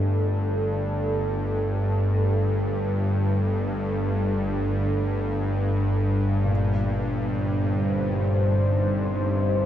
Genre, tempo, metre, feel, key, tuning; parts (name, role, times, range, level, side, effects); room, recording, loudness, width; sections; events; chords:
ambient; free time; G minor; A4 = 440 Hz
deep dark ambient pad; sustained chords; 0.0-9.7 s; G3 to G5; -30 LUFS; right 1 dB; chorus, built-in reverb
dark concert grand piano; arpeggios; 0.0-9.7 s; Bb2; -32 LUFS; left 2 dB; analog delay
bowed-like drone; drone; 0.0-9.7 s; G1 to G2; -23 LUFS; equal; built-in reverb
wet plate reverb, RT60 3.6 s; echo-heavy mix; -22 LUFS; side -11 dB against mid
0.0-9.7 A section
0.0 Gsus2; 6.5 Cm/G